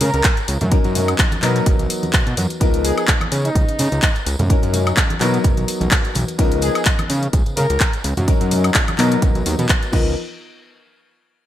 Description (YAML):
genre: filtered disco house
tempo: 127 BPM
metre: 4/4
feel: swing 55% on 16ths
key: Db mixolydian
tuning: A4 = 440 Hz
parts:
  - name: warm horn section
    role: melody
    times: 0.0-7.9 s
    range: Eb4 to Bb4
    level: -25 LUFS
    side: equal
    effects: sidechain pumping, digital delay
  - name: clear concert grand piano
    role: accompaniment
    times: 0.0-10.1 s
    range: F3 to Bb4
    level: -23 LUFS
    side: left 3 dB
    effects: phaser, vintage 12-bit sampler grit, sidechain pumping
  - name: fat analog bass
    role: bass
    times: 0.0-10.2 s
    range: Gb1 to Db3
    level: -20 LUFS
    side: equal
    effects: sidechain pumping
  - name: house drum kit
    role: drums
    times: 0.0-10.0 s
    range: crash cymbal, handclaps, hi-hat, woodblock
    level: -21 LUFS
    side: left 1 dB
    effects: sidechain pumping on hats, sidechain pumping on perc, sidechain pumping on cymbals, gated reverb
  - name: congas and tambourine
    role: percussion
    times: 0.0-10.1 s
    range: none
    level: -28 LUFS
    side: right 2 dB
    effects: sidechain pumping on perc
  - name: electronic kick drum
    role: drums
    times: 0.2-10.0 s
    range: none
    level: -17 LUFS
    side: equal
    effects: none
room: light reverb, digital ambience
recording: bright 1980s-style digital production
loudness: -15 LUFS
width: side -12 dB against mid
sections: 0.0-10.2 A section; 10.2-11.5 B section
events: drop 0.0-10.2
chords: 0.0 Db13; 0.7 Gb6; 1.4 Cbmaj7; 2.6 Db13; 4.5 Gb6; 5.2 Cbmaj7; 6.4 Db13; 8.3 Gb6; 9.0 Cbmaj7; 9.9 Db13; 10.2 N.C.